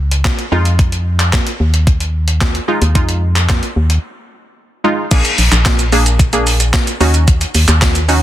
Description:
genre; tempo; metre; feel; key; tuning
dance-pop; 111 BPM; 4/4; straight; Eb minor; A4 = 440 Hz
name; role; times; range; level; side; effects
organ-like FM bass; bass; 0.0-8.2 s; Bb1 to F2; -13 LUFS; equal; sidechain pumping
clean 12-bit digital drum machine; drums; 0.1-8.2 s; crash cymbal, handclaps, hi-hat, kick drum, shaker, snare drum; -14 LUFS; equal; soft clipping on snare
wavetable chord stab; accompaniment; 0.5-8.2 s; Ab3 to Ab4; -17 LUFS; right 1 dB; sidechain pumping
tambourine; percussion; 5.7-7.9 s; none; -33 LUFS; left 9 dB; none
room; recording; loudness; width
digital ambience; dense, heavily limited modern master; -11 LUFS; side -13 dB against mid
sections
0.0-5.1 A section; 5.1-8.2 B section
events
break 4.0-5.1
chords
0.0 N.C.; 0.5 Ebsus24; 5.1 Bb7; 7.0 Ebm7

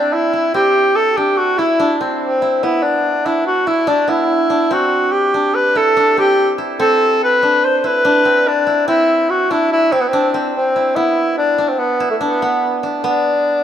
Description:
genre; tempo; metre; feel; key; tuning
progressive instrumental, progressive; 144 BPM; 5/4; straight; unclear; A4 = 440 Hz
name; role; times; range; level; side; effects
warm tenor saxophone; melody; 0.0-13.6 s; A3 to C5; -14 LUFS; equal; none
koto; arpeggios; 0.0-13.6 s; B3 to E4; -20 LUFS; equal; none
room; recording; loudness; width
wet lush hall reverb, RT60 2.8 s; rough home demo mix; -13 LUFS; side -9 dB against mid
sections
0.0-13.0 A section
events
none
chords
0.0 Cadd9; 2.6 Bmadd11; 4.7 C; 11.0 Bmadd11

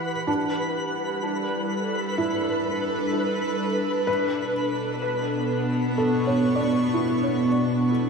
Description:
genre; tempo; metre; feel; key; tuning
ambient; 63 BPM; 4/4; straight; unclear; A4 = 439 Hz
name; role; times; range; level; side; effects
airy breathy pad; sustained chords; 0.0-8.1 s; B2 to C#6; -24 LUFS; equal; chorus, shimmer reverb
felt-muted upright piano; arpeggios; 0.0-8.1 s; D4 to E5; -28 LUFS; right 1 dB; tape echo, shimmer reverb
twinkling granular texture; texture; 0.0-8.1 s; B4 to B5; -30 LUFS; equal; built-in reverb, shimmer reverb
room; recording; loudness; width
wet echo chamber reverb, RT60 2.0 s, small room ambience; echo-heavy mix; -22 LUFS; side -5 dB against mid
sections
0.0-8.1 A section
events
fade-in on analog synth pad 0.0-8.1; fade-out on synth texture 0.0-8.1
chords
0.3 Gadd9; 4.1 Bmadd9

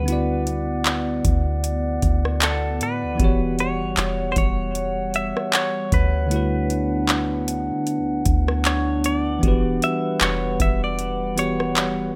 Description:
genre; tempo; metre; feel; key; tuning
contemporary R&B; 77 BPM; 4/4; swing 58% on 16ths; E dorian; A4 = 441 Hz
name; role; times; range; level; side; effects
direct-recorded clean electric guitar; melody; 0.0-12.2 s; A4 to E5; -31 LUFS; equal; none
bell-like tine electric piano; accompaniment; 0.0-12.2 s; D3 to D5; -29 LUFS; equal; none
glass harmonica; sustained chords; 0.0-12.2 s; G3 to F#5; -28 LUFS; equal; none
soft 808-style bass; bass; 0.0-12.1 s; E1 to D3; -28 LUFS; equal; none
booming analog drum machine; drums; 0.1-12.0 s; handclaps, hi-hat, kick drum, rim click; -24 LUFS; equal; none
room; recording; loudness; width
digital ambience; rough home demo mix; -22 LUFS; mono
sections
0.0-12.2 A section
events
none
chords
0.1 D6; 3.2 Em69; 6.3 D6; 9.4 Em69

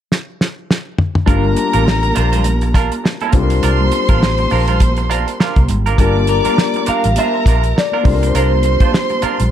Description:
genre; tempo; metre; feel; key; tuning
lush 1970s-style soul; 102 BPM; 4/4; swing 58% on 16ths; G minor; A4 = 438 Hz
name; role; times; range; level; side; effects
damped 70s drum kit; drums; 0.1-9.5 s; hi-hat, kick drum, snare drum, toms; -16 LUFS; equal; none
warm studio violin section; second line; 1.3-9.5 s; Bb4 to D6; -22 LUFS; equal; none
dark baby grand piano; accompaniment; 1.3-9.5 s; G3 to Bb4; -21 LUFS; left 7 dB; none
semi-hollow electric guitar; riff; 1.3-9.4 s; D4 to C5; -22 LUFS; right 9 dB; wide subtle chorus
vintage muted fingered electric bass; bass; 1.3-9.5 s; G1 to C2; -16 LUFS; equal; none
congas; percussion; 1.3-9.5 s; none; -25 LUFS; right 4 dB; none
electric guitar through a small old amp; melody; 6.3-9.5 s; Bb4 to F5; -19 LUFS; left 2 dB; spring reverb
room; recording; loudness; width
small room ambience; none; -12 LUFS; side -10 dB against mid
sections
0.0-1.3 A section; 1.3-6.0 B section; 6.0-9.5 C section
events
drum fill 0.1-1.3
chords
0.0 N.C.; 1.3 Gm7; 3.3 C9sus4; 6.0 Gm7; 8.0 C9sus4

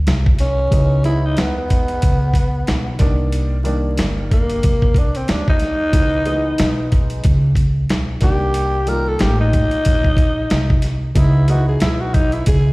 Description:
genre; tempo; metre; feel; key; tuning
hip hop, jazz-hop; 92 BPM; 4/4; swing 57% on 16ths; unclear; A4 = 440 Hz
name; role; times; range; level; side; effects
upright bass; bass; 0.0-12.7 s; G1 to E2; -18 LUFS; equal; none
dusty soul sampler-style drum kit; drums; 0.1-12.6 s; hi-hat, kick drum, snare drum; -16 LUFS; equal; none
growling tenor saxophone; melody; 0.4-12.7 s; Bb3 to Bb4; -21 LUFS; equal; plate reverb, tape echo
dark baby grand piano; accompaniment; 0.7-12.5 s; Eb3 to E#4; -25 LUFS; equal; plate reverb
room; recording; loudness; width
light reverb; played on a big sound system in a bare room, stone room reverb, vinyl crackle; -14 LUFS; side -23 dB against mid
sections
0.0-12.7 A section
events
tenor saxophone solo 0.0-12.7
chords
0.0 N.C.; 0.7 C#m9; 3.0 Cm9; 5.9 C#m9; 8.2 Cm9; 11.2 C#m9

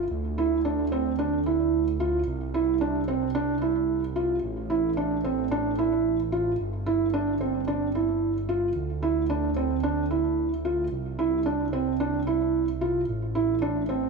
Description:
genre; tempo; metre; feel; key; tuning
piano and strings electronica; 111 BPM; 4/4; straight; D minor; A4 = 440 Hz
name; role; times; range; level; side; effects
felt-muted upright piano; riff; 0.0-14.1 s; C4 to F4; -24 LUFS; right 3 dB; digital delay
dark detuned saw bass; bass; 0.0-14.1 s; G1 to D2; -31 LUFS; right 2 dB; none
room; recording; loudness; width
moderate lush hall reverb, RT60 1.9 s, studio reverb; none; -24 LUFS; side -3 dB against mid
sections
0.0-14.1 A section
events
none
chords
0.1 Dsus2; 2.3 C; 4.4 A5; 6.6 G5; 8.8 Dsus2; 10.9 C; 13.1 Am

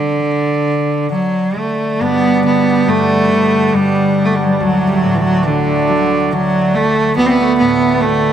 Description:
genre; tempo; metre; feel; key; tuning
celtic folk, Celtic slow air; 70 BPM; 3/4; rubato; unclear; A4 = 440 Hz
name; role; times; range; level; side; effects
clear cello; melody; 0.0-8.3 s; D3 to C4; -14 LUFS; right 2 dB; none
concert harp; accompaniment; 0.0-8.3 s; D2 to F#3; -18 LUFS; left 4 dB; none
mellow accordion; sustained chords; 2.0-8.3 s; A2 to D4; -20 LUFS; right 3 dB; none
room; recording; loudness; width
moderate scoring stage reverb, RT60 1.8 s; none; -12 LUFS; side -9 dB against mid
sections
0.0-2.0 A section; 2.0-8.3 B section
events
none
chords
0.0 N.C.; 2.0 G; 4.6 D; 7.2 Gadd9/D (rootless)

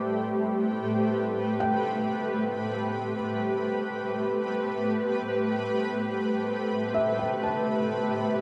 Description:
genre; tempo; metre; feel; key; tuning
ambient; free time; none; none; A minor; A4 = 436 Hz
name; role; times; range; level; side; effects
granular cloud pad; sustained chords; 0.0-8.4 s; A3 to C5; -29 LUFS; equal; built-in reverb, shimmer reverb
felt-muted upright piano; arpeggios; 0.0-8.4 s; E5 to A5; -35 LUFS; equal; tape echo, shimmer reverb
room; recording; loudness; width
wet huge ambient reverb, RT60 8.8 s; dark, warm production; -28 LUFS; mono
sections
0.0-8.4 A section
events
none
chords
0.0 Am9

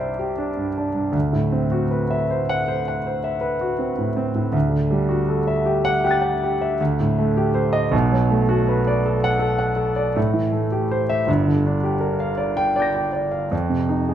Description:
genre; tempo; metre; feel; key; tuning
classical, impressionist solo piano; 53 BPM (dotted quarters); 9/8; rubato; G major; A4 = 436 Hz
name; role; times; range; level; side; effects
warm grand piano; solo; 0.0-14.1 s; G1 to C7; -18 LUFS; equal; none
room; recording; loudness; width
moderate recital hall reverb, RT60 1.7 s; dark, warm production; -18 LUFS; side -10 dB against mid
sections
0.0-14.1 A section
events
none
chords
0.0 Cadd9; 1.1 D13; 4.5 Em11/D; 6.8 Cm6/D; 7.9 Bm7; 10.2 Am7; 11.3 Gm7; 13.5 F7(no3)

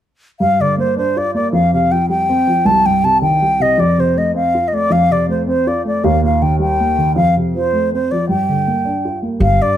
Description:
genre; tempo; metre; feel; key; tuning
celtic folk, Celtic jig; 106 BPM (dotted quarters); 6/8; straight; G minor; A4 = 437 Hz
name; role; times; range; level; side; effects
baroque flute; melody; 0.4-9.8 s; C5 to A5; -15 LUFS; equal; plate reverb
dark upright piano; accompaniment; 0.4-9.8 s; C2 to F4; -16 LUFS; right 1 dB; none
upright bass; bass; 9.4-9.6 s; G1; -14 LUFS; equal; none
room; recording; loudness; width
moderate studio reverb, RT60 0.7 s; close, detailed microphones; -13 LUFS; side -11 dB against mid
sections
0.4-9.4 A section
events
none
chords
0.4 Gm7; 1.5 Fsus2; 2.6 Cm; 3.8 F; 6.0 Eb; 7.2 F; 8.3 Gm7

